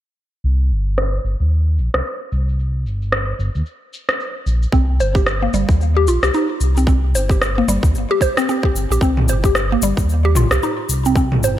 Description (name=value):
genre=organic downtempo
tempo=112 BPM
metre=4/4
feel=swing 59% on 16ths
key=C minor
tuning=A4 = 440 Hz
part: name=smooth gliding synth bass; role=bass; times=0.4-11.6 s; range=G1 to Eb2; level=-17 LUFS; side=equal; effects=sidechain pumping
part: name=organic electronic drum kit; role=drums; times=0.4-11.6 s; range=cabasa, rim click, toms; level=-21 LUFS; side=equal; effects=low-pass filter on perc, low-pass filter on snare, low-pass filter on toms, low-pass filter on room
part: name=mallet-like synth pluck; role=arpeggios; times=4.7-11.6 s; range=G3 to C5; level=-19 LUFS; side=equal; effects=chorus, phaser, digital delay
part: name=electronic kick drum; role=drums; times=4.7-11.3 s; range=none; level=-17 LUFS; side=equal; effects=none
room=light reverb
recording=none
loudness=-15 LUFS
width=side -12 dB against mid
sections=0.4-9.0 A section; 9.0-11.6 B section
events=filter sweep on drum 0.4-9.0; filter sweep on analog synth bass 0.4-9.0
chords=0.4 Cm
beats=| 0.45 0.98 1.52 2.05 | 2.59 3.12 3.66 4.20 | 4.73 5.27 5.80 6.34 | 6.88 7.41 7.95 8.48 | 9.02 9.55 10.09 10.62 | 11.16